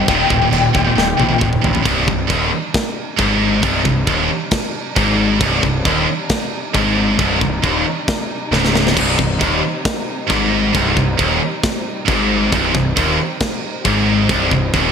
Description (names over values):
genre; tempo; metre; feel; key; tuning
heavy metal; 135 BPM; 4/4; straight; C minor; A4 = 438 Hz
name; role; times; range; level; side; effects
bluesy overdriven lead guitar; melody; 0.0-1.4 s; G5; -20 LUFS; left 6 dB; distortion, digital delay
warm studio string section; sustained chords; 0.0-14.9 s; C3 to G4; -27 LUFS; equal; none
scooped high-gain guitar; riff; 0.0-14.9 s; C2 to Eb3; -19 LUFS; right 9 dB; distortion
tight distorted guitar; riff; 0.0-14.9 s; C2 to Eb3; -20 LUFS; left 8 dB; distortion
fuzz picked electric bass; bass; 0.1-14.9 s; C1 to Bb1; -21 LUFS; left 1 dB; overdrive
tight metal drum kit; drums; 0.1-14.8 s; china cymbal, crash cymbal, kick drum, snare drum, toms; -20 LUFS; equal; gated reverb
room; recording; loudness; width
moderate lush hall reverb, RT60 1.8 s; bright 1980s-style digital production; -14 LUFS; side -7 dB against mid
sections
0.0-1.9 A section; 1.9-14.9 B section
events
drum fill 1.0-1.9, 8.5-9.0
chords
0.1 Eb; 1.9 Cm